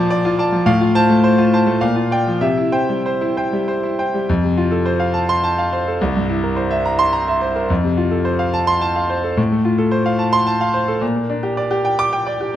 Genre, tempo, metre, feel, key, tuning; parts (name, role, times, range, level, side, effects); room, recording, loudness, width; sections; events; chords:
classical, virtuoso piano study; 96-112 BPM; 3/4; rubato; F major; A4 = 441 Hz
clear grand piano; solo; 0.0-12.6 s; C2 to D6; -15 LUFS; equal
moderate scoring stage reverb, RT60 1.5 s; close, detailed microphones; -15 LUFS; side -11 dB against mid
0.0-4.3 A section; 4.3-12.6 B section
0.0 Bbmaj7; 0.7 F/A; 1.8 Gm7/Bb; 2.4 C; 4.3 F; 6.0 C7; 7.7 F; 9.4 F/A; 11.0 Gm/Bb